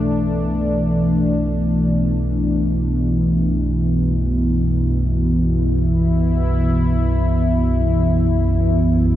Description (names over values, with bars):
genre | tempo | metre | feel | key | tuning
dark ambient drone | free time | none | none | B minor | A4 = 440 Hz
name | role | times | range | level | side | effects
sweeping resonant pad | sustained chords | 0.0-9.2 s | B2 to E4 | -18 LUFS | equal | chorus
deep rumbling drone | drone | 0.0-9.2 s | B1 to F#2 | -20 LUFS | equal | built-in reverb
bronze singing bowl | texture | 0.0-9.2 s | B4 | -47 LUFS | right 2 dB | none
room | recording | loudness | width
wet echo chamber reverb, RT60 2.3 s | none | -16 LUFS | side -12 dB against mid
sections
0.0-9.2 A section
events
none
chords
0.0 Bm7